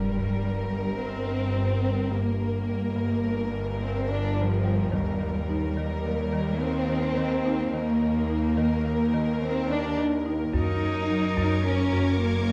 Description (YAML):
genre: cinematic, suspense film score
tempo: 107 BPM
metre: 5/4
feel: straight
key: G minor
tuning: A4 = 441 Hz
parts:
  - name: clear symphonic violin section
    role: melody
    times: 0.0-12.5 s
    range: Bb4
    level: -37 LUFS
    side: equal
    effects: none
  - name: buzzing marimba with medium hard mallets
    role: riff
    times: 0.0-12.5 s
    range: F#2 to Eb4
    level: -33 LUFS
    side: equal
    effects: none
  - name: rich studio cello section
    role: bass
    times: 0.0-12.5 s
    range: F3 to D#4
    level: -30 LUFS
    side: equal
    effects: none
  - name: rich symphonic double bass section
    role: bass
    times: 0.0-12.5 s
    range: Eb2 to G2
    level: -34 LUFS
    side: equal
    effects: none
  - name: bowed-like drone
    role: drone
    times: 0.0-12.5 s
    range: F#1 to Eb2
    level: -37 LUFS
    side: equal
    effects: built-in reverb
  - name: sub drop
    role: sound effects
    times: 0.0-2.1 s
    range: none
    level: -41 LUFS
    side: equal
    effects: none
  - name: taiko ensemble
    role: drums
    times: 0.2-0.4, 4.9-6.0, 10.5-11.6 s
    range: none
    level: -36 LUFS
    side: equal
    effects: none
  - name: rich symphonic violin section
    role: texture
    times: 10.5-12.5 s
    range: C#6 to Ab6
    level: -41 LUFS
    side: equal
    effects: none
room: light reverb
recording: none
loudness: -26 LUFS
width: mono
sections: 0.0-12.5 A section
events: impact 0.0-2.1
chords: 0.0 Gm; 4.9 Eb; 10.5 F#6